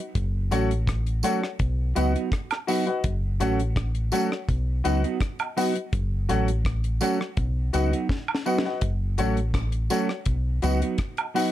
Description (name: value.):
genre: roots reggae.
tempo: 83 BPM.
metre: 4/4.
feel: straight.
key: F# dorian.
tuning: A4 = 445 Hz.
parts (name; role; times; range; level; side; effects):
mellow electric guitar; accompaniment; 0.0-11.5 s; F#3 to F#4; -29 LUFS; right 6 dB; wide subtle chorus.
fingered electric bass; bass; 0.2-10.8 s; F#1 to C#2; -25 LUFS; equal; none.
deep reggae drum kit; drums; 0.2-11.5 s; hi-hat, kick drum, rim click, snare drum; -28 LUFS; equal; none.
warm upright piano; stabs; 0.5-11.5 s; F#4 to F#5; -27 LUFS; left 5 dB; none.
tambourine and woodblock; percussion; 0.5-11.5 s; none; -32 LUFS; right 6 dB; none.
room: light reverb.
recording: none.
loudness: -23 LUFS.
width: side -13 dB against mid.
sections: 0.0-11.5 A section.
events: drum fill 8.1-8.8.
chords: 0.2 F#m; 1.6 B; 3.0 F#m; 4.5 B; 5.9 F#m; 7.4 B; 8.8 F#m; 10.3 B.